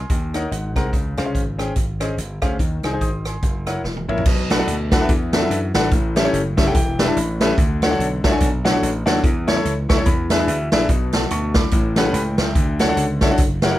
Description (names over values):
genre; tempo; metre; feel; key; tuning
uptempo gospel; 144 BPM; 4/4; swing 59% on 8ths; Ab major, A major from 4.3 s; A4 = 444 Hz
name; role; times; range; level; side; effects
clear grand piano; accompaniment; 0.0-13.8 s; Ab2 to Eb6; -21 LUFS; left 2 dB; none
slap bass; bass; 0.0-13.7 s; Fb1 to F#2; -24 LUFS; equal; none
swinging big-band drum kit; drums; 0.1-13.7 s; crash cymbal, hi-hat, kick drum, rim click, snare drum, toms; -20 LUFS; equal; none
room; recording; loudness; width
little or no reverb; none; -17 LUFS; side -14 dB against mid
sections
0.0-4.3 A section; 4.3-13.8 B section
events
grand piano fill 0.1-0.9, 6.3-7.6, 9.7-10.9; drum fill 3.8-4.3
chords
0.1 Ebm7; 0.5 Ab9; 0.9 Dbmaj7; 2.6 Ab; 3.4 Gb7; 4.3 Bm7; 5.1 E9sus4; 5.9 A7; 6.7 Em7; 7.2 A9; 7.6 Dmaj7; 9.2 A/E; 10.1 E7; 10.9 Bm; 11.7 A13; 12.6 Dmaj7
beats
0.10 0.51 | 0.93 1.35 1.76 2.18 | 2.60 3.01 3.43 3.84 | 4.26 4.67 5.09 5.50 | 5.92 6.33 6.75 7.16 | 7.58 7.99 8.40 8.82 | 9.23 9.65 10.06 10.48 | 10.89 11.31 11.73 12.14 | 12.56 12.97 13.39